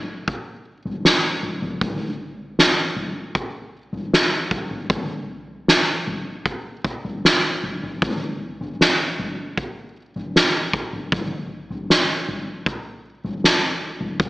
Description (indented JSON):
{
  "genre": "pop",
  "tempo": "78 BPM",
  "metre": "4/4",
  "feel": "straight",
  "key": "none",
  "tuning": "none",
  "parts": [
    { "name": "soft-mallet drum kit", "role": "drums", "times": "0.3-14.3 s", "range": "kick drum, snare drum, toms", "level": "-19 LUFS", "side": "equal", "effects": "none" }
  ],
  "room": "wet lush hall reverb, RT60 1.8 s",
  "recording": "AM radio sound",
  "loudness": "-19 LUFS",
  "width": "side -19 dB against mid",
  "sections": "0.0-14.3 A section",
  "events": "none",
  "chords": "none",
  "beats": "0.27 1.04 | 1.81 2.58 3.35 4.12 | 4.89 5.67 6.45 7.23 | 8.01 8.79 9.57 10.35 | 11.12 11.89 12.66 13.43 | 14.20"
}